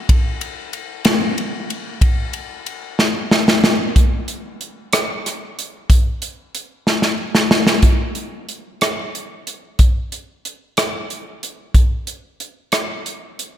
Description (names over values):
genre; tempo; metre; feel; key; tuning
pop; 62 BPM (dotted quarters); 6/8; straight; none; none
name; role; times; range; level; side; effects
natural country drum kit; drums; 0.1-13.5 s; hi-hat, kick drum, ride cymbal, rim click, snare drum; -16 LUFS; equal; none
room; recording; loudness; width
moderate lush hall reverb, RT60 2.0 s; big arena sound; -16 LUFS; side -11 dB against mid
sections
0.0-4.0 A section; 4.0-7.8 B section; 7.8-13.6 C section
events
drum fill 3.0-4.0, 6.9-7.8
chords
none